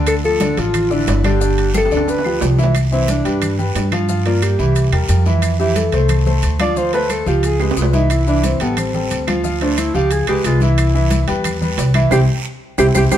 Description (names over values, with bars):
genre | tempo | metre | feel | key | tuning
Afro-Cuban jazz | 179 BPM | 4/4 | straight | C major | A4 = 440 Hz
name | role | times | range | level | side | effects
clear concert grand piano | accompaniment | 0.0-13.2 s | D3 to F5 | -20 LUFS | left 2 dB | none
upright bass | bass | 0.0-13.2 s | G1 to G2 | -17 LUFS | equal | none
breathy alto saxophone | melody | 0.1-13.2 s | B3 to D5 | -19 LUFS | right 1 dB | none
claves | percussion | 0.1-13.2 s | none | -29 LUFS | right 4 dB | none
congas | percussion | 0.1-13.2 s | none | -26 LUFS | left 1 dB | none
guiro | percussion | 0.1-13.2 s | none | -32 LUFS | right 5 dB | none
maracas | percussion | 0.1-13.2 s | none | -33 LUFS | left 6 dB | none
timbales | percussion | 0.1-13.2 s | none | -27 LUFS | right 6 dB | none
room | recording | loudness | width
light reverb | band playing live in one room | -14 LUFS | side -11 dB against mid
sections
0.0-2.7 A section; 2.7-13.2 B section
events
drum fill 1.7-2.7, 7.6-8.1, 12.8-13.2; alto saxophone solo 2.7-13.2; band accent 12.1-13.2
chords
0.1 Dmadd9; 1.4 G7; 2.7 Cmaj9; 4.1 Gm7; 4.8 C7; 5.4 Fmaj7; 6.8 Dm7; 7.4 Db7; 8.1 C; 8.8 Am7; 9.4 Dm7; 10.1 Db7; 10.8 Cmaj7